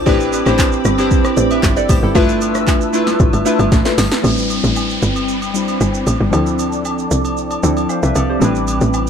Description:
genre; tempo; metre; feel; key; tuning
amapiano; 115 BPM; 4/4; straight; A minor; A4 = 442 Hz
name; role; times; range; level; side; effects
warm analog keys; accompaniment; 0.0-9.1 s; F3 to F5; -18 LUFS; equal; chorus, low-pass filter
hollow soft pad; sustained chords; 0.0-9.1 s; C4 to E6; -23 LUFS; right 2 dB; ensemble chorus, sidechain pumping, low-pass filter
tight log drum bass; bass; 0.0-9.1 s; F1 to D2; -18 LUFS; equal; none
mallet-like synth pluck; stabs; 0.1-4.0 s; F4 to E5; -22 LUFS; left 2 dB; chorus, phaser, tape echo
deep house drum kit; drums; 0.1-9.1 s; handclaps, hi-hat, kick drum, rim click, shaker, snare drum; -18 LUFS; equal; none
agogo bells and woodblock; percussion; 0.1-9.1 s; none; -29 LUFS; right 1 dB; none
downlifter; sound effects; 4.2-8.4 s; none; -26 LUFS; equal; none
saturated sub bass; bass; 8.4-9.1 s; A1; -22 LUFS; equal; none
room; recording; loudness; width
little or no reverb; dark, warm production; -13 LUFS; side -7 dB against mid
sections
0.0-4.2 A section; 4.2-9.1 B section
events
drop 0.0-4.2; drum fill 3.7-4.2; filter sweep 4.2-9.1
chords
0.1 Am11; 2.2 G13; 4.2 Am11; 6.3 Dm7; 8.4 Am11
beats
| 0.07 0.59 1.11 1.63 | 2.15 2.68 3.20 3.72 | 4.24 4.76 5.29 5.81 | 6.33 6.85 7.37 7.89 | 8.41 8.94

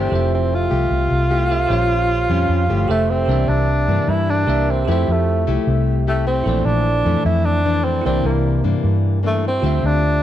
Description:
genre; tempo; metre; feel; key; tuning
bossa nova; 151 BPM; 4/4; straight; F major; A4 = 440 Hz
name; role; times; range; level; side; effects
breathy tenor saxophone; melody; 0.0-10.2 s; A3 to F4; -20 LUFS; right 1 dB; none
bell-like tine electric piano; accompaniment; 0.0-10.2 s; E4 to Bb5; -26 LUFS; right 10 dB; none
nylon-string guitar; accompaniment; 0.0-10.2 s; F2 to G4; -23 LUFS; left 7 dB; none
vintage muted fingered electric bass; bass; 0.0-10.2 s; F1 to G2; -19 LUFS; equal; none
room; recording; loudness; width
moderate echo chamber reverb, RT60 1.7 s, small room ambience; 1960s-style stereo with parts hard left and right; -15 LUFS; side -11 dB against mid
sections
0.0-3.3 A section; 3.3-10.2 B section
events
none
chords
0.1 Fmaj9; 1.7 Bbm6; 2.9 Fmaj9; 3.3 C9; 4.9 Fmaj9; 6.5 Bbmaj9#11; 8.0 C9; 9.6 Dm11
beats
| 0.12 0.51 0.91 1.30 | 1.70 2.10 2.50 2.89 | 3.29 3.68 4.08 4.48 | 4.87 5.27 5.67 6.06 | 6.46 6.86 7.25 7.65 | 8.04 8.44 8.84 9.23 | 9.63 10.03

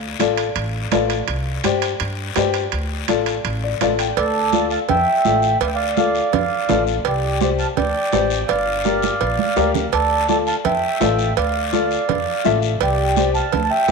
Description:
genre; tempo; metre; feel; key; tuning
latin, cumbia; 167 BPM; 4/4; straight; D minor; A4 = 439 Hz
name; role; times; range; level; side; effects
upright bass; bass; 0.0-13.9 s; G1 to G2; -25 LUFS; equal; none
warm upright piano; accompaniment; 0.2-13.9 s; F4 to G5; -22 LUFS; left 10 dB; none
congas; percussion; 0.2-13.9 s; none; -26 LUFS; right 13 dB; none
guiro; percussion; 0.2-13.9 s; none; -30 LUFS; left 12 dB; none
timbales and cowbell; percussion; 0.2-13.9 s; none; -26 LUFS; right 13 dB; none
mellow accordion; melody; 4.2-13.9 s; G4 to A5; -20 LUFS; right 3 dB; none
room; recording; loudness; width
moderate echo chamber reverb, RT60 2.6 s; 1960s-style stereo with parts hard left and right; -17 LUFS; side -4 dB against mid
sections
0.0-4.2 A section; 4.2-13.9 B section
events
upright piano fill 3.4-4.2; drum fill 9.0-9.9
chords
0.0 Dm; 1.3 Csus2; 2.7 Dm; 4.2 Dmadd9; 7.1 Csus2; 8.5 Gm; 9.9 Dmadd9; 12.8 Csus2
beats
0.20 0.56 0.92 | 1.28 1.65 2.01 2.37 | 2.73 3.09 3.45 3.81 | 4.17 4.53 4.89 5.25 | 5.61 5.97 6.33 6.69 | 7.05 7.41 7.77 8.13 | 8.49 8.85 9.21 9.57 | 9.93 10.29 10.65 11.01 | 11.37 11.73 12.09 12.45 | 12.81 13.17 13.53 13.89

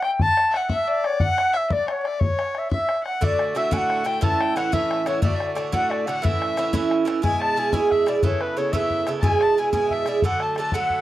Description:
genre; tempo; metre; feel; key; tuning
celtic folk, Celtic jig; 120 BPM (dotted quarters); 6/8; straight; A mixolydian, E mixolydian from 7.2 s; A4 = 439 Hz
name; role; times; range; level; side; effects
mellow wooden flute; melody; 0.0-11.0 s; B4 to A5; -24 LUFS; left 1 dB; tape echo
warm fiddle; second line; 0.0-11.0 s; B4 to A5; -28 LUFS; left 5 dB; none
bodhran; percussion; 0.0-10.9 s; none; -25 LUFS; left 2 dB; none
Irish bouzouki; accompaniment; 3.2-11.0 s; A2 to A4; -23 LUFS; right 4 dB; none
room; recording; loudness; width
light reverb; dry, close 1970s-style studio recording; -19 LUFS; side -14 dB against mid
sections
0.0-7.2 A section; 7.2-11.0 B section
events
none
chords
0.0 N.C.; 3.2 D; 4.2 A; 5.2 D; 6.2 A; 7.2 E; 8.2 Aadd9; 9.2 E; 10.2 D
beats
| 0.20 0.71 | 1.21 1.72 | 2.22 2.72 | 3.23 3.73 | 4.23 4.73 | 5.24 5.74 | 6.24 6.74 | 7.24 7.74 | 8.24 8.74 | 9.23 9.73 | 10.23 10.73

